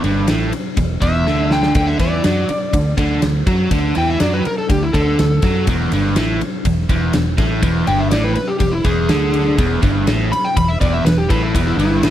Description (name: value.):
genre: blues rock power trio and southern rock.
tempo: 123 BPM.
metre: 4/4.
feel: straight.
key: unclear.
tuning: A4 = 440 Hz.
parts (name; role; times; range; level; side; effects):
biting overdriven guitar; riff; 0.0-12.1 s; E2 to F#3; -18 LUFS; right 1 dB; none.
vintage muted fingered electric bass; bass; 0.0-12.1 s; E1 to F#2; -20 LUFS; equal; none.
huge arena drum kit; drums; 0.0-12.1 s; kick drum, ride cymbal, snare drum; -19 LUFS; equal; none.
overdriven slide guitar; melody; 1.0-12.1 s; E4 to B5; -21 LUFS; left 1 dB; none.
overdriven tonewheel organ; sustained chords; 9.5-12.1 s; B3 to G#4; -30 LUFS; right 3 dB; none.
room: light reverb.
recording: none.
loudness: -14 LUFS.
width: side -12 dB against mid.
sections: 0.0-12.1 A section.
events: electric slide guitar solo 0.0-12.1; drum fill 1.3-1.8.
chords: 0.0 Emadd11; 1.8 D5; 5.7 E.